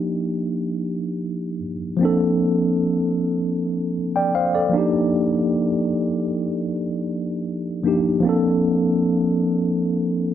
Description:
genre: R&B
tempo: 77 BPM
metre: 4/4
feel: straight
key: Bb major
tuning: A4 = 441 Hz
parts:
  - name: mellow tine electric piano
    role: solo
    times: 0.0-10.3 s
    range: F3 to G5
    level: -19 LUFS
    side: equal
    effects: medium stereo tremolo
room: moderate lush hall reverb, RT60 2.8 s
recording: none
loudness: -19 LUFS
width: side -10 dB against mid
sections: 0.0-8.2 A section; 8.2-10.3 B section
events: none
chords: 0.0 Ebmaj7; 2.0 Bbmaj7; 4.7 Ebmaj7; 8.2 Bbmaj7

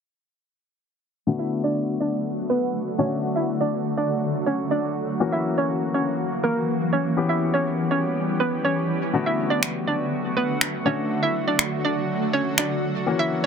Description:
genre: dance-pop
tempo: 122 BPM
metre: 4/4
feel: straight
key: B minor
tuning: A4 = 441 Hz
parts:
  - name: warm grand piano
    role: accompaniment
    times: 1.3-13.5 s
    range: D3 to G4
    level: -27 LUFS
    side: left 5 dB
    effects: low-pass filter
  - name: shimmering ambient pad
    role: sustained chords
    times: 1.9-13.5 s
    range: D3 to G4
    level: -27 LUFS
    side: right 1 dB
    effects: chorus, built-in reverb, low-pass filter
  - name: hollow square pluck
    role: melody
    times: 1.4-13.5 s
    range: A#3 to E5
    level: -25 LUFS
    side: right 2 dB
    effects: chorus, low-pass filter, tape echo
  - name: electronic finger snaps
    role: drums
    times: 9.6-12.7 s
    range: none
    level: -21 LUFS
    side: equal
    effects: soft clipping on snare
room: light reverb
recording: dense, heavily limited modern master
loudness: -21 LUFS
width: side -6 dB against mid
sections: 1.3-13.5 A section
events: filter sweep 1.3-13.5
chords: 1.3 Bm7; 3.0 Dmaj7; 5.2 F#7; 7.2 C#m7b5; 9.1 Bm7; 10.9 Dmaj7

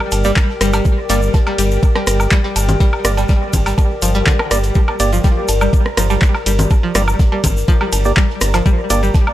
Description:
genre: minimal techno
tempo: 123 BPM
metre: 4/4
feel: straight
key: G minor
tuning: A4 = 441 Hz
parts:
  - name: electronic woodblock, cowbell, rim click and congas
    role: percussion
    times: 0.0-9.3 s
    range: none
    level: -22 LUFS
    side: equal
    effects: studio reverb, dub echo
  - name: warbly tape-like pad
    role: texture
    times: 0.0-9.3 s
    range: G4 to Bb5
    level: -23 LUFS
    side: left 1 dB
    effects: chorus, built-in reverb, sidechain pumping
  - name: rubbery square bass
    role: bass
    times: 0.1-9.1 s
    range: G1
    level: -17 LUFS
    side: equal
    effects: sidechain pumping
  - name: booming analog drum machine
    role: drums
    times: 0.1-9.0 s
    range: handclaps, hi-hat, ride cymbal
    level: -22 LUFS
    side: equal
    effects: studio reverb
  - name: warm soul drum kit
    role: drums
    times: 0.1-9.3 s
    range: ride cymbal, snare drum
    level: -34 LUFS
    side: left 3 dB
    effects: none
  - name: egg shaker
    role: percussion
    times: 0.1-9.2 s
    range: none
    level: -28 LUFS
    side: left 3 dB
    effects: none
  - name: string-like resonator pluck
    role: riff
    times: 0.2-9.1 s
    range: D3 to G3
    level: -22 LUFS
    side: equal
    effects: chorus, phaser, sidechain pumping, analog delay
  - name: percussive organ stab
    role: stabs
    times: 0.2-9.0 s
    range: Bb3 to D5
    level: -23 LUFS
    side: right 3 dB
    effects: wide subtle chorus, dub echo
  - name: electronic kick drum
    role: drums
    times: 0.4-9.2 s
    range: none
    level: -13 LUFS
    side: equal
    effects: studio reverb
room: light reverb, digital ambience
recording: echo-heavy mix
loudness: -12 LUFS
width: side -14 dB against mid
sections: 0.0-9.3 A section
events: none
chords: 0.0 Gm

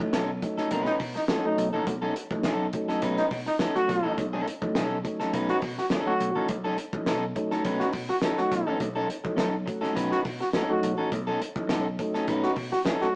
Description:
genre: funk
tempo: 104 BPM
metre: 4/4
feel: straight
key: B mixolydian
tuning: A4 = 441 Hz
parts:
  - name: electric guitar at the edge of break-up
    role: accompaniment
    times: 0.0-13.1 s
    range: C#4 to B4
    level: -29 LUFS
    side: equal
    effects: none
  - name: mellow tonewheel organ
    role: stabs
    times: 0.0-13.2 s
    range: F#3 to F#4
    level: -31 LUFS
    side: equal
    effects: slow rotary speaker
  - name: vintage slap bass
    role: bass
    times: 0.0-12.7 s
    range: A1 to B2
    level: -35 LUFS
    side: equal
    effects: none
  - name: damped 70s drum kit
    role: drums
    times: 0.0-13.1 s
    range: hi-hat, kick drum, snare drum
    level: -32 LUFS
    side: equal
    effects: none
  - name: bright trombone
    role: second line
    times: 0.9-13.2 s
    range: D#4 to F#4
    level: -28 LUFS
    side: equal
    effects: none
room: moderate stone room reverb, RT60 1.3 s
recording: rough rehearsal-room recording, vinyl crackle, small speaker sound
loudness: -24 LUFS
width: side -31 dB against mid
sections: 0.0-13.2 A section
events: none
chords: 0.0 B9

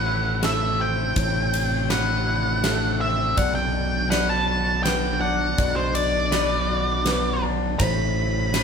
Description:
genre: post-rock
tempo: 81 BPM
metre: 3/4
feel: straight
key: A dorian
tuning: A4 = 440 Hz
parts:
  - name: octave-fuzz lead guitar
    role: melody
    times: 0.0-8.6 s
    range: C5 to B5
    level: -25 LUFS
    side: equal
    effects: distortion
  - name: soft additive organ-like pad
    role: sustained chords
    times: 0.0-8.6 s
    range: C3 to E4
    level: -32 LUFS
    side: right 2 dB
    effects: ensemble chorus, built-in reverb
  - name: twangy electric guitar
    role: arpeggios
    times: 0.0-8.6 s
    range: A2 to B4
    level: -30 LUFS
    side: left 4 dB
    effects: none
  - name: growling fingered electric bass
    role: bass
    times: 0.0-8.6 s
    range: A1 to B1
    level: -26 LUFS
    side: equal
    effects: overdrive
  - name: felt-muted upright piano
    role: arpeggios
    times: 0.4-8.5 s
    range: A4 to D5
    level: -32 LUFS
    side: left 1 dB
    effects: none
  - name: huge arena drum kit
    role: drums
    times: 0.4-8.6 s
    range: kick drum, ride cymbal, snare drum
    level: -27 LUFS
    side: equal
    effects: none
room: wet large studio reverb, RT60 1.0 s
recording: band playing live in one room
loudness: -20 LUFS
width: side -6 dB against mid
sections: 0.0-8.6 A section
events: none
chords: 0.0 Amadd9; 3.4 Bm; 7.8 Amadd9

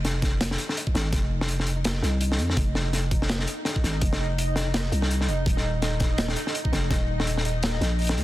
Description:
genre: half-time drum and bass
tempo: 166 BPM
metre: 4/4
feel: swing 58% on 16ths, half-time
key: unclear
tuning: A4 = 439 Hz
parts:
  - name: growling 808-style bass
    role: bass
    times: 0.0-8.2 s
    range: Eb1 to F2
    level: -26 LUFS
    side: equal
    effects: none
  - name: crunchy breakbeat drum kit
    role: drums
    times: 0.0-8.2 s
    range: hi-hat, snare drum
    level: -28 LUFS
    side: left 1 dB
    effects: soft clipping on snare
  - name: pulsing gated texture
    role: texture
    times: 0.0-8.2 s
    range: Eb4 to Eb5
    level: -34 LUFS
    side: equal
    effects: chorus, built-in reverb
  - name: electronic kick drum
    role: drums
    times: 0.2-7.0 s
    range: none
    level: -25 LUFS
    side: equal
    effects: overdrive
room: little or no reverb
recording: dense, heavily limited modern master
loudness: -23 LUFS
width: side -16 dB against mid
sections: 0.0-8.2 A section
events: none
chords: 0.0 F7(no3); 5.5 Eb5

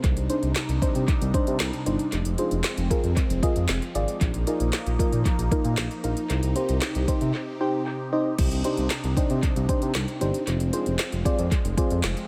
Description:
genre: synth-pop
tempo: 115 BPM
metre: 4/4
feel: straight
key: C minor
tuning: A4 = 440 Hz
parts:
  - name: phased analog pad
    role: sustained chords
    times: 0.0-12.3 s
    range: C3 to G4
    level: -34 LUFS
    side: equal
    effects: phaser, chorus
  - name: smooth synth bass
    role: bass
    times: 0.0-12.1 s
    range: F1 to C3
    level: -29 LUFS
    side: equal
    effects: none
  - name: deep house drum kit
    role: drums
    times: 0.0-12.3 s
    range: crash cymbal, handclaps, hi-hat, kick drum, snare drum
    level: -29 LUFS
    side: equal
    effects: analog delay
  - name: mellow FM electric piano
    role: accompaniment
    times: 0.3-12.0 s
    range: C4 to G5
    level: -31 LUFS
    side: equal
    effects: chorus, phaser, analog delay
room: light reverb, digital ambience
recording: echo-heavy mix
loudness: -25 LUFS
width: mono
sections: 0.0-8.4 A section; 8.4-12.3 A section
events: FM electric piano fill 7.3-8.4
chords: 0.0 Cmadd9; 2.1 Fm; 4.2 Bbsus4; 6.3 Cm; 8.4 Cmadd9; 10.5 Fm

